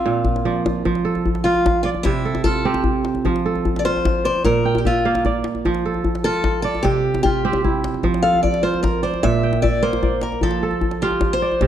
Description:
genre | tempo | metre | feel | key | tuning
west african traditional, West African string and xylophone music | 100 BPM (dotted quarters) | 12/8 | straight | F major | A4 = 440 Hz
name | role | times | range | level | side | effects
picked steel-string acoustic guitar | melody | 0.0-11.7 s | E4 to F5 | -21 LUFS | left 2 dB | none
kora | arpeggios | 0.0-11.7 s | Bb2 to G5 | -20 LUFS | right 5 dB | none
djembe | percussion | 0.2-11.7 s | none | -23 LUFS | left 2 dB | none
room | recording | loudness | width
moderate recital hall reverb, RT60 1.4 s | dark, warm production | -17 LUFS | side -10 dB against mid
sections
0.9-11.7 A section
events
steel-string acoustic guitar solo 0.9-11.7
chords
0.0 Bb; 0.9 F; 2.1 C; 3.3 F; 4.5 Bb; 5.6 F; 6.8 C; 8.0 F; 9.2 Bb; 10.4 F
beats
0.26 | 0.86 1.46 2.06 2.66 | 3.25 3.85 4.45 5.05 | 5.65 6.24 6.84 7.44 | 8.03 8.63 9.23 9.82 | 10.42 11.02 11.61

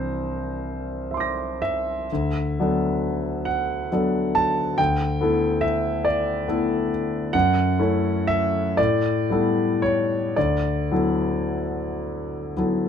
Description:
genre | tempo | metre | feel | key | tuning
classical, impressionist solo piano | 34-48 BPM (dotted quarters) | 6/8 | rubato | D major | A4 = 441 Hz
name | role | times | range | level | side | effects
clear concert grand piano | solo | 0.0-12.9 s | C2 to Bb6 | -21 LUFS | left 1 dB | none
room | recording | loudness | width
moderate studio reverb, RT60 0.9 s | dark, warm production | -21 LUFS | side -8 dB against mid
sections
0.0-12.9 A section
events
none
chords
0.0 C9; 2.1 D6; 4.8 A11/D; 7.3 F#m7; 8.8 A9sus4; 10.4 D69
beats
0.56 | 2.10 3.47 | 4.79 6.06 | 7.34 8.78 | 10.36 12.02

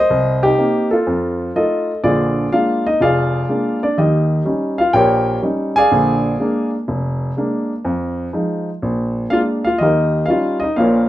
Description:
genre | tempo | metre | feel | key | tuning
solo jazz | 124 BPM | 4/4 | swing 69% on 8ths | Bb mixolydian | A4 = 440 Hz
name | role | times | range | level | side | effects
warm grand piano | solo | 0.0-11.1 s | F1 to Ab5 | -15 LUFS | equal | none
room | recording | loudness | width
moderate large studio reverb, RT60 0.8 s | minimal, uncompressed stereo recording | -15 LUFS | side -14 dB against mid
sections
0.0-2.0 A section; 2.0-11.1 A section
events
none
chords
0.1 Cm7; 1.1 F7; 2.0 Bb7; 4.0 Eb7; 5.9 Bb7; 7.9 Fm7; 8.8 Bb7; 9.8 Eb7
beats
| 0.10 0.58 1.06 1.55 | 2.03 2.52 3.00 3.49 | 3.97 4.46 4.94 5.42 | 5.91 6.39 6.88 7.37 | 7.85 8.34 8.82 9.31 | 9.79 10.28 10.76

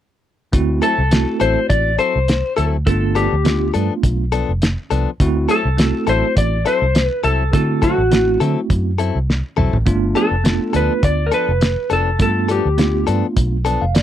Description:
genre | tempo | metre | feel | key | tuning
straight-eighth soul blues | 103 BPM | 4/4 | swing 54% on 16ths | unclear | A4 = 440 Hz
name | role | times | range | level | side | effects
bell-like tine electric piano | accompaniment | 0.5-14.0 s | A3 to A5 | -21 LUFS | right 4 dB | fast stereo tremolo
vintage muted fingered electric bass | bass | 0.5-14.0 s | F1 to D3 | -19 LUFS | equal | none
cloth-damped thuddy drum kit | drums | 0.5-14.0 s | hi-hat, kick drum, snare drum, toms | -17 LUFS | equal | none
electric slide guitar | melody | 0.8-13.0 s | F#4 to D5 | -19 LUFS | left 2 dB | none
direct-recorded clean electric guitar | stabs | 0.8-13.8 s | F3 to A4 | -21 LUFS | left 9 dB | none
room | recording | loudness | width
little or no reverb | dry, close 1970s-style studio recording | -15 LUFS | side -11 dB against mid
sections
0.5-14.0 A section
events
drum fill 9.3-9.9; tine electric piano fill 13.4-14.0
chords
0.5 D9; 2.9 G9; 5.2 D9; 9.9 G9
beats
| 0.54 1.12 1.70 2.29 | 2.87 3.45 4.04 4.62 | 5.20 5.79 6.37 6.95 | 7.54 8.12 8.70 9.29 | 9.87 10.45 11.04 11.62 | 12.20 12.79 13.37 13.95

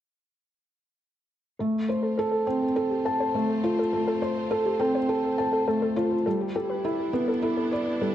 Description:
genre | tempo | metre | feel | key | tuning
electronica | 103 BPM | 4/4 | straight | unclear | A4 = 440 Hz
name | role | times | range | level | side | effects
clear studio string section | sustained chords | 1.6-8.1 s | G3 to C5 | -41 LUFS | right 1 dB | none
warbly dusty pluck | arpeggios | 1.6-8.1 s | G4 to C5 | -30 LUFS | left 2 dB | chorus, ping-pong delay
felt-muted upright piano | riff | 1.6-8.1 s | G3 to A5 | -24 LUFS | equal | ping-pong delay
room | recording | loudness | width
wet recital hall reverb, RT60 1.6 s, studio ambience | none | -23 LUFS | side -11 dB against mid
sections
1.6-8.1 A section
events
fade-in on string section 1.6-8.1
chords
1.6 F; 6.3 Em7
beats
| 1.60 2.18 2.76 3.35 | 3.93 4.51 5.09 5.68 | 6.26 6.84 7.42 8.01

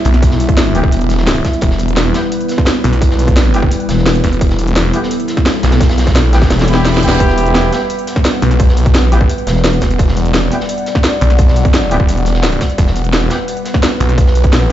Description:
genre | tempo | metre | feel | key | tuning
dark technical drum and bass | 172 BPM | 4/4 | straight | E minor | A4 = 441 Hz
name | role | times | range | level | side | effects
dark analog pad | sustained chords | 0.0-14.7 s | G3 to F#5 | -18 LUFS | equal | chorus, sidechain pumping
crunchy breakbeat drum kit | drums | 0.0-14.6 s | hi-hat, snare drum | -26 LUFS | equal | high-pass filter on hats, small room ambience, high-pass filter on snare, high-pass filter on room
snarling distorted saw bass | bass | 0.1-14.7 s | E1 to B1 | -13 LUFS | equal | distortion, sidechain pumping
drum and bass drum kit | drums | 0.1-14.6 s | hi-hat, snare drum | -17 LUFS | equal | small room ambience
electronic kick drum | drums | 0.2-14.5 s | none | -13 LUFS | equal | overdrive, small room ambience
warm brass ensemble | stabs | 0.7-13.4 s | B3 to G4 | -21 LUFS | equal | dub echo
growling FM bass | bass | 3.9-4.2, 6.5-7.2, 9.5-9.8 s | E1 | -13 LUFS | left 1 dB | none
reverse cymbal | sound effects | 6.7-7.2 s | none | -27 LUFS | right 6 dB | none
room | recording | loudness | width
light reverb, small room ambience | played on a big sound system in a bare room, large studio reverb, nothing above 7.8 kHz | -10 LUFS | side -12 dB against mid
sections
0.0-14.7 A section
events
drum fill 6.5-7.2; reverse cymbal 6.7-7.2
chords
0.0 Em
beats
| 0.23 0.57 0.92 1.27 | 1.62 1.97 2.32 2.67 | 3.02 3.37 3.71 4.06 | 4.41 4.76 5.11 5.46 | 5.81 6.16 6.50 6.85 | 7.20 7.55 7.90 8.25 | 8.60 8.95 9.29 9.64 | 9.99 10.34 10.69 11.04 | 11.39 11.74 12.09 12.44 | 12.78 13.13 13.48 13.83 | 14.18 14.53

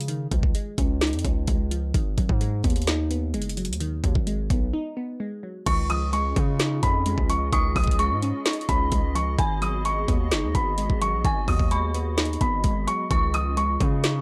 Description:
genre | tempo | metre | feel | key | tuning
hip hop, trap | 129 BPM | 4/4 | half-time | unclear | A4 = 440 Hz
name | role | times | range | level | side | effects
glassy wavetable pluck | accompaniment | 0.0-14.2 s | D#3 to D#4 | -34 LUFS | equal | chorus, low-pass filter
distorted 808-style bass | bass | 0.0-14.2 s | F#1 to C#3 | -29 LUFS | equal | distortion
trap drum kit | drums | 0.0-14.1 s | crash cymbal, hi-hat, kick drum, snare drum | -27 LUFS | equal | none
felt-muted upright piano | melody | 5.7-14.2 s | G#5 to D#6 | -29 LUFS | equal | low-pass filter, analog delay
dark detuned synth bell | second line | 5.7-13.5 s | B5 to D#6 | -37 LUFS | equal | chorus, analog delay
hollow soft pad | sustained chords | 5.8-14.2 s | B3 to D#5 | -38 LUFS | equal | ensemble chorus
room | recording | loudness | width
little or no reverb | dry, gritty hardware recording | -24 LUFS | mono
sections
0.0-5.7 A section; 5.7-14.2 B section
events
break 4.7-5.7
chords
0.0 C#add9; 1.9 G#m7; 5.7 C#add9; 9.4 G#m7; 13.1 C#add9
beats
| 0.08 0.55 1.01 1.48 | 1.94 2.41 2.87 3.34 | 3.81 4.27 4.74 5.20 | 5.67 6.13 6.59 7.06 | 7.53 7.99 8.46 8.92 | 9.39 9.85 10.32 10.78 | 11.25 11.71 12.18 12.64 | 13.11 13.57 14.04

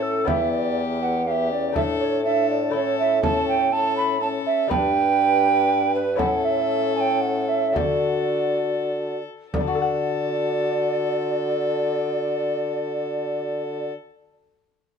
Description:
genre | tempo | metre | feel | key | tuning
classical, renaissance-style consort dance | 94-122 BPM | 3/4 | straight | D major | A4 = 440 Hz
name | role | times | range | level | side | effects
warm violin | melody | 0.0-13.9 s | G4 to B4 | -33 LUFS | left 7 dB | none
mellow hollow tenor recorder | second line | 0.0-13.9 s | A4 to B5 | -23 LUFS | right 4 dB | none
lute | accompaniment | 0.0-14.2 s | E2 to F#5 | -31 LUFS | left 8 dB | none
mellow trombone | accompaniment | 0.0-13.9 s | B3 to F#4 | -29 LUFS | left 4 dB | none
warm bassoon | bass | 0.0-13.9 s | E2 to D3 | -27 LUFS | equal | none
frame drum | percussion | 0.3-9.8 s | none | -28 LUFS | equal | none
room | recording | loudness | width
moderate stone room reverb, RT60 1.1 s | minimal, uncompressed stereo recording | -20 LUFS | side -6 dB against mid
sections
0.0-9.5 A section; 9.5-13.4 B section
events
slowing down 5.5-9.5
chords
0.3 Em; 1.8 Asus4; 2.7 A; 4.7 G; 6.2 A; 7.8 D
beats
| 0.27 0.77 1.26 | 1.76 2.25 2.75 | 3.24 3.73 4.22 | 4.71 5.20 5.70 | 6.19 6.70 7.22 | 7.76 8.33 8.92 | 9.54 10.18 10.82 | 11.46 12.10 12.74

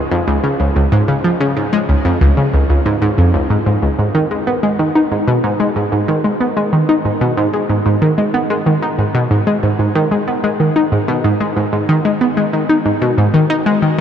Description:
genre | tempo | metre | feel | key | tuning
ambient | 93 BPM | 4/4 | straight | unclear | A4 = 440 Hz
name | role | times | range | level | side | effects
analog pluck | solo | 0.1-14.0 s | C#2 to D#4 | -12 LUFS | equal | chorus, cassette tape, tape echo
room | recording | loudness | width
wet huge ambient reverb, RT60 7.1 s | dark, warm production | -12 LUFS | side -8 dB against mid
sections
0.0-4.0 A section; 4.0-14.0 B section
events
none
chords
none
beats
0.12 0.76 | 1.41 2.05 2.69 3.34 | 3.99 4.63 5.28 5.92 | 6.57 7.21 7.86 8.50 | 9.15 9.79 10.44 11.08 | 11.73 12.37 13.02 13.66

